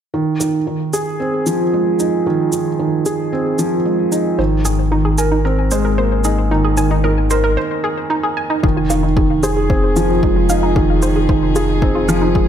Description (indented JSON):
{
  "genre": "piano and strings electronica",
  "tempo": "113 BPM",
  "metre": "4/4",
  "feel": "straight",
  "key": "F minor",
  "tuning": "A4 = 440 Hz",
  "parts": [
    { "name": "felt-muted upright piano", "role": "riff", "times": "0.1-12.5 s", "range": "Eb3 to Bb4", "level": "-16 LUFS", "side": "right 2 dB", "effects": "ping-pong delay" },
    { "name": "shaker", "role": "drums", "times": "0.4-12.2 s", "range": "none", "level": "-27 LUFS", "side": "right 2 dB", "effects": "overdrive" },
    { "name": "analog pluck", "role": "arpeggios", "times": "4.4-12.4 s", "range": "Eb4 to Ab5", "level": "-22 LUFS", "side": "right 1 dB", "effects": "chorus, sidechain pumping, ping-pong delay" },
    { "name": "warm sub bass", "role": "bass", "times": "4.4-12.5 s", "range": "F1 to Ab1", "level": "-18 LUFS", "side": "left 1 dB", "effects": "sidechain pumping" },
    { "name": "warm string quartet", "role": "sustained chords", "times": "8.6-12.5 s", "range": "C3 to Ab4", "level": "-33 LUFS", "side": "left 3 dB", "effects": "sidechain pumping" },
    { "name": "electronic kick drum", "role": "drums", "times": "8.6-12.5 s", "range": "none", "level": "-18 LUFS", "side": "left 1 dB", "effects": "overdrive" }
  ],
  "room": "light reverb, studio reverb",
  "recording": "none",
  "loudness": "-14 LUFS",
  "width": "side -9 dB against mid",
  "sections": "0.1-8.6 A section; 8.6-12.5 B section",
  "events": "break 7.6-8.6; fade-in on string quartet 8.6-12.5",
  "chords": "0.1 Fm7; 4.4 Abadd9; 8.6 Fm7",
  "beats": "| 0.14 0.67 1.20 1.73 | 2.26 2.79 3.33 3.86 | 4.39 4.92 5.45 5.98 | 6.51 7.04 7.57 8.10 | 8.63 9.16 9.70 10.23 | 10.76 11.29 11.82 12.35"
}